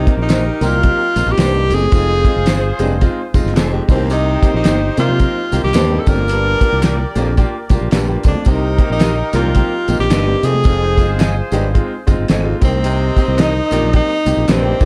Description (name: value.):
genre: uptempo 1960s-style soul.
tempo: 110 BPM.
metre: 4/4.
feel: swing 60% on 8ths.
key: C minor.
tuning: A4 = 440 Hz.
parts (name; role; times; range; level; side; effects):
breathy tenor saxophone; melody; 0.0-14.9 s; C4 to Bb4; -20 LUFS; equal; slapback echo.
clear horn section; second line; 0.0-14.4 s; Eb4 to Eb5; -29 LUFS; equal; none.
warm baritone saxophone; riff; 0.0-14.9 s; Eb2 to C3; -25 LUFS; equal; none.
fingered electric bass; bass; 0.0-14.9 s; F1 to C3; -20 LUFS; equal; none.
clear grand piano; accompaniment; 0.1-14.9 s; Ab3 to Bb4; -26 LUFS; equal; none.
cloth-damped thuddy drum kit; drums; 0.1-14.9 s; hi-hat, kick drum, snare drum; -18 LUFS; equal; none.
congas; percussion; 0.1-14.8 s; none; -32 LUFS; equal; none.
electric guitar through a small old amp; stabs; 0.3-14.6 s; Bb3 to Eb5; -26 LUFS; equal; ensemble chorus.
handclaps and tambourine; percussion; 0.3-14.9 s; none; -36 LUFS; equal; none.
room: light reverb.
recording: dark, warm production.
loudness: -15 LUFS.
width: mono.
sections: 0.0-14.9 A section.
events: none.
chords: 0.0 Cm7; 1.9 Fm7; 3.8 Cm7; 6.0 Gm7; 8.5 Cm7; 10.7 Fm7; 12.6 Cm7.